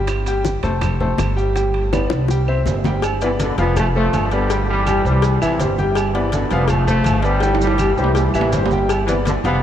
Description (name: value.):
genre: latin, salsa.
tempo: 164 BPM.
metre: 4/4.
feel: straight.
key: G major.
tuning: A4 = 440 Hz.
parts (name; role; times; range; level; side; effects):
bright concert grand piano; accompaniment; 0.0-9.6 s; E3 to G5; -21 LUFS; left 2 dB; none.
upright bass; bass; 0.0-9.6 s; F1 to C2; -20 LUFS; equal; none.
bongos and cowbell; percussion; 0.1-9.6 s; none; -28 LUFS; left 6 dB; none.
claves; percussion; 0.1-9.1 s; none; -36 LUFS; right 6 dB; none.
congas; percussion; 0.1-9.6 s; none; -27 LUFS; left 1 dB; none.
maracas; percussion; 0.1-9.6 s; none; -38 LUFS; right 5 dB; none.
timbales and agogo bells; percussion; 0.1-9.6 s; none; -26 LUFS; right 6 dB; none.
bright trombone section; melody; 3.2-9.6 s; B2 to B3; -21 LUFS; equal; ping-pong delay.
room: moderate cathedral reverb, RT60 6.7 s.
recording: dreamy mix soaked in reverb, cassette tape.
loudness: -15 LUFS.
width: side -10 dB against mid.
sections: 0.0-3.0 A section; 3.0-9.6 B section.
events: drum fill 1.9-3.0, 7.4-8.9.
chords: 0.1 Fadd9; 1.6 G; 2.3 C; 3.0 G; 3.8 F; 4.5 G5; 5.2 C; 6.0 G; 6.7 F; 7.4 G5; 8.2 C; 8.9 G.